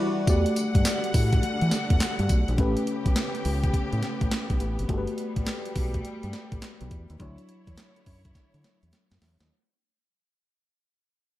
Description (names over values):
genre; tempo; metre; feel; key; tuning
R&B, new jack swing; 104 BPM; 4/4; swing 65% on 16ths; E dorian; A4 = 441 Hz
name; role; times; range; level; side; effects
mellow FM electric piano; accompaniment; 0.0-9.5 s; F#3 to D5; -30 LUFS; left 1 dB; chorus
dark studio string section; sustained chords; 0.0-9.5 s; C#3 to F#5; -34 LUFS; left 1 dB; none
deep dub fingered electric bass; bass; 0.3-9.5 s; G1 to E3; -27 LUFS; equal; none
clean 12-bit digital drum machine; drums; 0.3-9.5 s; handclaps, hi-hat, kick drum, snare drum, tambourine; -27 LUFS; equal; gated reverb
room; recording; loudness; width
light reverb, digital ambience; none; -23 LUFS; side -15 dB against mid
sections
0.3-9.5 A section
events
band accent 0.0; fade-out 0.3-9.5; drum fill 8.4-9.5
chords
0.3 Em11; 2.6 A9; 4.9 Gmaj9; 7.2 Dmaj9